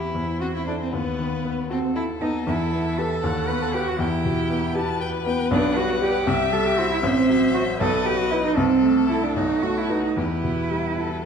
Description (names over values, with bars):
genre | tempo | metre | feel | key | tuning
quick classical-period movement for piano quartet | 78 BPM (dotted quarters) | 6/8 | rubato | E minor | A4 = 440 Hz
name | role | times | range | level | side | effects
rich violin | melody | 0.0-11.3 s | F#4 to E5 | -30 LUFS | left 6 dB | none
rich cello | second line | 0.0-11.3 s | B3 to B4 | -23 LUFS | right 4 dB | none
rich violin | second line | 0.0-11.3 s | B3 to A5 | -32 LUFS | left 4 dB | none
warm baby grand piano | accompaniment | 0.0-11.3 s | A1 to D5 | -24 LUFS | left 2 dB | none
room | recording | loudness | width
wet recital hall reverb, RT60 1.4 s | dark, warm production | -20 LUFS | side -6 dB against mid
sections
0.0-11.3 A section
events
none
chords
0.2 Am/E; 0.9 B7/D#; 2.5 Em; 3.2 B/D#; 4.0 Em; 5.5 G/B; 6.3 C; 7.0 F#dim/A; 7.8 B; 8.6 Am/C; 9.4 B5; 10.2 Em